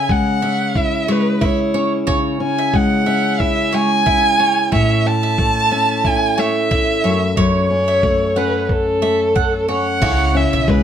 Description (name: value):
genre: acoustic pop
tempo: 91 BPM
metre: 4/4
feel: swing 55% on 16ths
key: unclear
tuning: A4 = 440 Hz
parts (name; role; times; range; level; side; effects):
- warm violin; melody; 0.0-10.8 s; A4 to A5; -18 LUFS; right 1 dB; plate reverb
- fingerpicked steel-string acoustic guitar; accompaniment; 0.0-10.8 s; F#2 to G#4; -18 LUFS; left 1 dB; none
- bowl-back mandolin; arpeggios; 0.0-10.7 s; C#5 to F#5; -26 LUFS; right 6 dB; none
- dusty soul sampler-style drum kit; drums; 0.1-10.8 s; crash cymbal, kick drum; -21 LUFS; equal; none
- upright bass; bass; 10.0-10.8 s; B1 to C#2; -19 LUFS; equal; none
room: wet studio reverb, RT60 0.5 s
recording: none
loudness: -14 LUFS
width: side -9 dB against mid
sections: 0.0-10.0 A section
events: none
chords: 0.0 C#m; 4.7 A; 7.0 F#m; 10.0 C#m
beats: 0.10 0.76 1.42 | 2.08 2.74 3.40 4.06 | 4.72 5.38 6.05 6.71 | 7.37 8.03 8.69 9.36 | 10.02 10.68